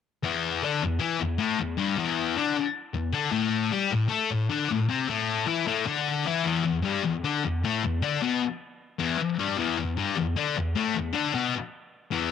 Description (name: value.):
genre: rock.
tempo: 154 BPM.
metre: 4/4.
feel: straight.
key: unclear.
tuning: A4 = 441 Hz.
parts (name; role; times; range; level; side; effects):
thick fuzz guitar; solo; 0.2-12.3 s; E2 to A4; -24 LUFS; left 5 dB; distortion.
room: light reverb.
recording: none.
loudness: -24 LUFS.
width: side -7 dB against mid.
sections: 0.2-6.4 A section; 6.4-12.3 B section.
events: none.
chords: 0.2 Em7; 3.3 A5; 6.4 E5.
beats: | 0.23 0.62 1.01 1.39 | 1.78 2.17 2.56 2.94 | 3.33 3.72 4.11 4.50 | 4.89 5.28 5.67 6.06 | 6.45 6.84 7.23 7.62 | 8.01 8.40 8.80 9.19 | 9.58 9.97 10.36 10.76 | 11.15 11.54 11.93.